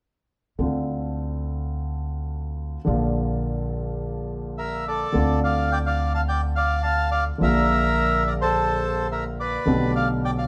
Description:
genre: tango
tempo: 106 BPM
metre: 4/4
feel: rubato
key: D minor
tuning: A4 = 440 Hz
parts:
  - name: warm concert grand piano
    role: accompaniment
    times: 0.6-10.5 s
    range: Bb1 to G4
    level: -28 LUFS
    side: equal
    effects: none
  - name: upright bass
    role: bass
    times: 0.6-10.5 s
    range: Bb1 to D2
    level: -29 LUFS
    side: equal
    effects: none
  - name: bandoneon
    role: melody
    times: 4.6-10.4 s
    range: A4 to A5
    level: -26 LUFS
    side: equal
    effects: none
room: wet stone room reverb, RT60 1.1 s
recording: band playing live in one room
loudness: -24 LUFS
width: mono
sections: 0.6-5.1 A section; 5.1-10.5 B section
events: none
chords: 0.6 Dm7; 2.9 Bb; 5.1 Dm7; 7.4 Bb; 9.7 Gadd9/B

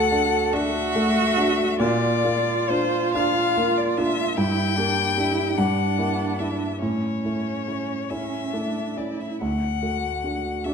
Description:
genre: classical, slow romantic movement for piano trio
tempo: 44-51 BPM (dotted quarters)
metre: 6/8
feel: rubato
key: D major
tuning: A4 = 440 Hz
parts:
  - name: rich violin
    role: melody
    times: 0.0-10.7 s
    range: C5 to G5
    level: -26 LUFS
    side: left 9 dB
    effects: none
  - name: rich cello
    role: second line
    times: 0.0-10.7 s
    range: C#4 to A4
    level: -26 LUFS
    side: right 7 dB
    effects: none
  - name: warm grand piano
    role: accompaniment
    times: 0.0-10.7 s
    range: D2 to G4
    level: -24 LUFS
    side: equal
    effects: none
room: wet recital hall reverb, RT60 1.4 s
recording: dark, warm production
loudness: -21 LUFS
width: side -6 dB against mid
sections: 0.0-10.7 A section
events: none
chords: 0.0 D; 1.8 Bb; 4.4 Gm; 5.6 Em7b5/G; 6.8 A; 9.4 D

